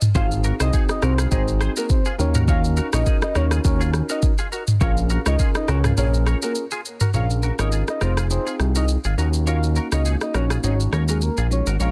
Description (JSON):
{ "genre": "afrobeats", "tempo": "103 BPM", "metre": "4/4", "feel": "swing 55% on 16ths", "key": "Bb minor", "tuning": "A4 = 441 Hz", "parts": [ { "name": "afro-pop drum kit", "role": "drums", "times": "0.0-11.9 s", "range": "kick drum, rim click, shaker, toms", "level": "-24 LUFS", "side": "equal", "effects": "soft clipping on snare" }, { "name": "bell-like tine electric piano", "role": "accompaniment", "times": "0.1-11.9 s", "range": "Ab3 to Bb4", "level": "-31 LUFS", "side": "equal", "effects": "none" }, { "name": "fat analog bass", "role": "bass", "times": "0.1-11.9 s", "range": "F1 to Eb2", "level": "-22 LUFS", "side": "equal", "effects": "none" }, { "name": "soft octave-layered synth lead", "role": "melody", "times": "0.2-11.9 s", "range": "Ab4 to F5", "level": "-31 LUFS", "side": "equal", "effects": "chorus, phaser" }, { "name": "direct-recorded clean electric guitar", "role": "riff", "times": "0.2-11.9 s", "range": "Eb4 to Db5", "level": "-34 LUFS", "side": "equal", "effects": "ensemble chorus" } ], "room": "little or no reverb", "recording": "dense, heavily limited modern master", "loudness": "-21 LUFS", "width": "mono", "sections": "0.0-7.1 A section; 7.1-11.9 B section", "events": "break 6.0-7.1; kick muted 7.1-11.9", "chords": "0.1 Ab7; 2.2 Ebm7; 4.8 Bbm7; 8.0 Fm7; 9.2 Ebm7; 10.6 Ab7sus4" }